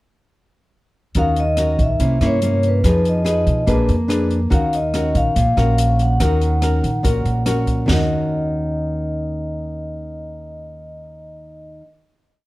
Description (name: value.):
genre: bossa nova.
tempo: 143 BPM.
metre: 4/4.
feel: straight.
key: Eb minor.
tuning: A4 = 439 Hz.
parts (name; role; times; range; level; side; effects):
open jazz drum kit; drums; 1.1-8.0 s; hi-hat, kick drum, rim click, snare drum, toms; -23 LUFS; equal; none.
vibraphone with soft mallets; melody; 1.2-11.8 s; Cb5 to Gb5; -23 LUFS; equal; none.
nylon-string guitar; accompaniment; 1.2-11.9 s; Bb2 to Cb5; -21 LUFS; left 1 dB; none.
upright bass; bass; 1.2-11.8 s; Bb1 to Cb3; -20 LUFS; equal; none.
room: light reverb.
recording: dark, warm production.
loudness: -16 LUFS.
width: side -19 dB against mid.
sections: 1.2-7.9 A section; 7.9-11.3 final chord.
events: none.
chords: 1.2 Ebm7; 2.0 C7b9; 2.8 Fm7b5; 3.7 Bb7b9; 4.5 Ebm7.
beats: | 1.15 1.57 2.00 2.42 | 2.84 3.26 3.68 4.10 | 4.52 4.94 5.36 5.78 | 6.21 6.62 7.04 7.47 | 7.89 8.31 8.73 9.15 | 9.57 9.99 10.41 10.83.